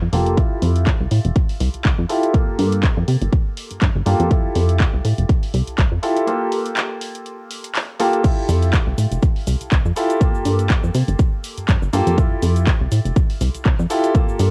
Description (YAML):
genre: filtered disco house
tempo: 122 BPM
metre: 4/4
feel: swing 55% on 16ths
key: F major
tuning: A4 = 440 Hz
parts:
  - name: bright concert grand piano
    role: accompaniment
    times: 0.0-14.5 s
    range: Bb3 to A4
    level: -25 LUFS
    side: equal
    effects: phaser, vintage 12-bit sampler grit, sidechain pumping, low-pass filter
  - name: plucky analog bass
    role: bass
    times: 0.0-14.5 s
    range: F1 to C3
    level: -21 LUFS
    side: equal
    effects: sidechain pumping, low-pass filter
  - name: punchy analog drum machine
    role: drums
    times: 0.1-14.5 s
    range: crash cymbal, handclaps, hi-hat, shaker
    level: -30 LUFS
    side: equal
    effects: overdrive, sidechain pumping on hats, cassette tape, sidechain pumping on cymbals, sidechain pumping on perc
  - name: electronic kick drum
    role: drums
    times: 0.4-14.3 s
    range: none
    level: -19 LUFS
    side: equal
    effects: cassette tape
room: little or no reverb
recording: home recording on cassette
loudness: -18 LUFS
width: mono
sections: 0.0-14.5 A section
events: filter sweep 0.0-14.5; break 6.3-8.2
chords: 0.4 Fmaj9; 2.3 Gm9; 4.3 Fmaj9; 6.3 Gm9; 8.2 Fmaj9; 10.2 Gm9; 12.2 Fmaj9